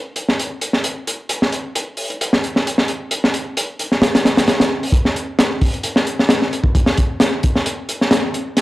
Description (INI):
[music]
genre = breakbeat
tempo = 132 BPM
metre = 4/4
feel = swing 55% on 16ths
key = none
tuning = none
[part]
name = crunchy breakbeat drum kit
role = drums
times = 0.2-8.6 s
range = hi-hat, kick drum, snare drum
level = -15 LUFS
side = equal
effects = none
[sound]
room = moderate digital room reverb, RT60 1.1 s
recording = dry, gritty hardware recording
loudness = -15 LUFS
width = side -18 dB against mid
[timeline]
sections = 0.0-4.9 A section; 4.9-8.6 B section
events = build-up 4.9-8.6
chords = none